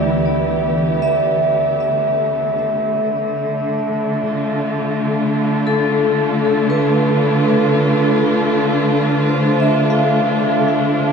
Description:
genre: ambient.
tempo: 58 BPM.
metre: 4/4.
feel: straight.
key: D dorian.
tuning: A4 = 435 Hz.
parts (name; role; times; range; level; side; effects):
dark chamber string section; sustained chords; 0.0-11.1 s; D2 to G4; -16 LUFS; equal; stereo widening, shimmer reverb.
vibraphone with medium hard mallets; arpeggios; 0.0-11.1 s; A4 to F5; -18 LUFS; equal; shimmer reverb, ping-pong delay.
bowed-like drone; drone; 0.0-11.1 s; D3; -32 LUFS; equal; none.
room: wet cathedral reverb, RT60 6.6 s.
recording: dark, warm production.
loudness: -14 LUFS.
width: side -6 dB against mid.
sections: 0.0-1.0 A section; 1.0-11.1 B section.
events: none.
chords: 0.0 Em7/D; 1.0 Dm9.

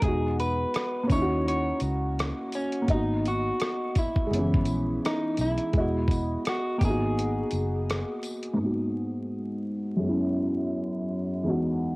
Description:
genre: lo-fi hip hop.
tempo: 84 BPM.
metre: 4/4.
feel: swing 62% on 16ths.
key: G# minor.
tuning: A4 = 440 Hz.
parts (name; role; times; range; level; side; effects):
electric guitar through a small old amp; melody; 0.0-8.2 s; C#4 to C#5; -30 LUFS; equal; low-pass filter, tape echo.
felt-muted upright piano; accompaniment; 0.0-12.0 s; E2 to D#5; -28 LUFS; equal; cassette tape, low-pass filter.
vintage muted fingered electric bass; bass; 0.0-8.0 s; E1 to D#2; -30 LUFS; equal; none.
dusty soul sampler-style drum kit; drums; 0.0-8.6 s; hi-hat, kick drum, rim click; -28 LUFS; equal; cassette tape.
tambourine; percussion; 0.4-8.4 s; none; -47 LUFS; left 3 dB; none.
room: light reverb, digital ambience.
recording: home recording on cassette, vinyl crackle.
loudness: -25 LUFS.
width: side -24 dB against mid.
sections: 0.0-8.6 A section; 8.6-12.0 B section.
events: break 7.2-8.6; filter sweep on felt piano 8.6-12.0.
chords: 0.0 Emaj9; 1.1 D#m7; 2.9 G#m9; 4.3 F#7sus4; 5.7 Emaj9; 6.8 G#m9; 10.0 F#7sus4; 11.5 Emaj9.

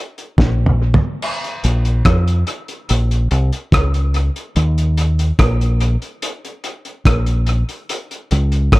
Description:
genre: lovers rock reggae.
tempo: 72 BPM.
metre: 4/4.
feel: straight.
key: unclear.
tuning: A4 = 440 Hz.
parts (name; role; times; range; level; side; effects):
cloth-damped thuddy drum kit; drums; 0.2-8.8 s; hi-hat, kick drum, rim click, snare drum, splash cymbal, toms; -17 LUFS; equal; dub echo.
deep dub fingered electric bass; bass; 0.4-8.8 s; Ab1 to F2; -15 LUFS; equal; none.
room: little or no reverb.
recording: dark, warm production.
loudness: -14 LUFS.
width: side -20 dB against mid.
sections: 0.0-8.8 A section.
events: drum fill 0.4-1.2.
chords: none.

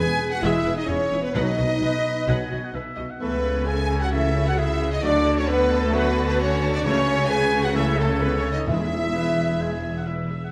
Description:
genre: cinematic, heroic adventure film score.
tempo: 131 BPM.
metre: 4/4.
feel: straight.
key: E major.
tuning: A4 = 444 Hz.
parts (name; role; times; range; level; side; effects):
warm symphonic violin section; melody; 0.0-10.0 s; A4 to G#5; -34 LUFS; equal; none.
bright clarinet; second line; 0.0-10.3 s; F#4 to C#5; -34 LUFS; equal; none.
mellow hollow concert flute; second line; 0.0-10.0 s; A4 to G#5; -33 LUFS; equal; none.
rich symphonic violin section; second line; 0.0-10.0 s; A4 to G#5; -38 LUFS; equal; none.
rich symphonic viola section; accompaniment; 0.0-10.5 s; B3 to A5; -37 LUFS; equal; none.
dark French horn section; sustained chords; 0.0-10.0 s; A3 to G#4; -30 LUFS; equal; none.
mellow trumpet section; stabs; 0.0-10.0 s; A4 to G#5; -31 LUFS; equal; none.
clear symphonic double bass section; bass; 0.0-10.3 s; E1 to D2; -30 LUFS; equal; none.
warm symphonic cello section; bass; 0.0-10.3 s; E2 to D3; -31 LUFS; equal; none.
timpani; percussion; 0.0-2.0, 8.7-9.3 s; E2 to B2; -34 LUFS; equal; none.
clear trombone section; sustained chords; 0.4-9.8 s; B2 to A3; -36 LUFS; equal; none.
warm oboe; second line; 1.8-3.2, 9.1-10.5 s; B4 to G#5; -38 LUFS; equal; none.
room: wet scoring stage reverb, RT60 1.8 s.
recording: none.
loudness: -22 LUFS.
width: mono.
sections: 0.0-10.5 A section.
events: none.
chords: 0.0 E; 1.4 B; 3.2 Aadd9/C#; 5.0 D; 6.8 Aadd9/C#; 8.7 E.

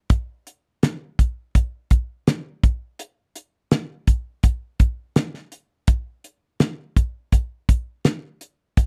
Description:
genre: rock.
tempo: 83 BPM.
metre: 4/4.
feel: straight.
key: none.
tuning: none.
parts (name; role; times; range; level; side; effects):
damped 70s drum kit; drums; 0.1-8.9 s; hi-hat, kick drum, snare drum; -20 LUFS; equal; none.
room: light reverb.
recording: dry, close 1970s-style studio recording.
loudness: -23 LUFS.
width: mono.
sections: 0.0-8.9 A section.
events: none.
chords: none.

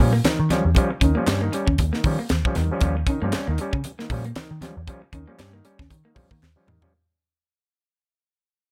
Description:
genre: funk.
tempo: 117 BPM.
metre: 4/4.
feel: swing 56% on 16ths.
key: Eb mixolydian.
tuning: A4 = 441 Hz.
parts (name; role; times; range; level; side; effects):
electric guitar through a small old amp; riff; 0.0-6.8 s; G3 to Db4; -32 LUFS; equal; none.
overdriven clav; stabs; 0.0-6.9 s; Eb3 to Db4; -30 LUFS; equal; auto-wah.
vintage muted picked electric bass; bass; 0.0-6.8 s; Eb2 to Eb3; -26 LUFS; equal; none.
tight funk drum kit; drums; 0.2-6.9 s; hi-hat, kick drum, snare drum, toms; -26 LUFS; equal; none.
congas; percussion; 0.2-6.8 s; none; -33 LUFS; equal; none.
group handclap; percussion; 0.3-6.6 s; none; -38 LUFS; equal; none.
room: small room ambience.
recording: none.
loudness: -22 LUFS.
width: mono.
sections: 0.0-6.9 A section.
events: fade-out 0.0-6.9; drum fill 6.4-6.9.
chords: 0.0 Eb9.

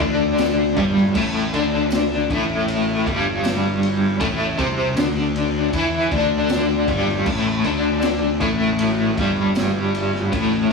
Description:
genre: psychedelic rock.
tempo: 78 BPM.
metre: 4/4.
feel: straight.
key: unclear.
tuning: A4 = 440 Hz.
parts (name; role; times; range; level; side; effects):
overdriven electric guitar; riff; 0.0-10.7 s; G2 to E4; -19 LUFS; left 1 dB; tremolo.
fuzz fingered electric bass; bass; 0.0-10.7 s; G1 to E2; -25 LUFS; left 2 dB; overdrive.
raw garage drum kit; drums; 0.0-10.5 s; crash cymbal, kick drum, ride cymbal, snare drum; -27 LUFS; left 1 dB; none.
tambourine; percussion; 0.4-9.7 s; none; -44 LUFS; right 5 dB; none.
room: moderate stone room reverb, RT60 1.0 s.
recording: rough rehearsal-room recording, warm saturation, studio ambience.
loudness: -17 LUFS.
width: side -4 dB against mid.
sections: 0.0-10.7 A section.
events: none.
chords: 0.0 A5.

